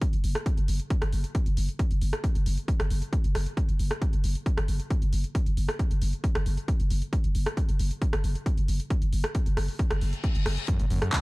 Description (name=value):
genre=driving peak-time techno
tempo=135 BPM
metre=4/4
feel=straight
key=unclear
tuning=A4 = 440 Hz
part: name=electronic kick drum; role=drums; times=0.0-11.2 s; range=none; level=-26 LUFS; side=equal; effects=overdrive
part: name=techno drum kit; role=drums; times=0.0-11.2 s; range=handclaps, hi-hat, rim click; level=-34 LUFS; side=equal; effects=overdrive, sidechain pumping on hats
part: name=growling 808-style bass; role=bass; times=0.1-11.0 s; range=F#1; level=-29 LUFS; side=equal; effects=sidechain pumping, low-pass filter
part: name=reverse cymbal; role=sound effects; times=10.0-10.7 s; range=none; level=-38 LUFS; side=left 5 dB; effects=none
part: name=screaming distorted acid line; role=riff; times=10.7-11.2 s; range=F#2 to C#3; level=-29 LUFS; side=equal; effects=distortion, chorus, sidechain pumping
room=little or no reverb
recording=dark, warm production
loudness=-25 LUFS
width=side -23 dB against mid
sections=0.0-11.2 A section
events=reverse cymbal 10.0-10.7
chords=0.0 F#5